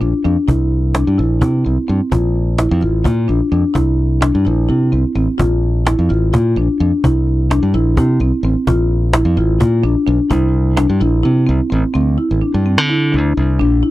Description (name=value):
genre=progressive instrumental, band music in an uneven meter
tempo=256 BPM (eighths)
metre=7/8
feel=straight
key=C mixolydian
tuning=A4 = 435 Hz
part: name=marimba with soft mallets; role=arpeggios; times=0.0-13.9 s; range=C4 to F4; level=-17 LUFS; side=equal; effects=none
part: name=modern bright fingered electric bass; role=bass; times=0.0-13.8 s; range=A1 to D3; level=-14 LUFS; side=equal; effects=none
part: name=cajon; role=drums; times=0.0-11.8 s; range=none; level=-16 LUFS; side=equal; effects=none
room=little or no reverb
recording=dry, close 1970s-style studio recording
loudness=-12 LUFS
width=side -16 dB against mid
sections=0.0-12.0 A section; 12.0-13.9 B section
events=none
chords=0.5 C7; 2.1 Bbmaj7; 3.8 C7; 5.4 Bbmaj7; 7.0 C7; 8.7 Bbmaj7; 10.3 C7; 12.0 D5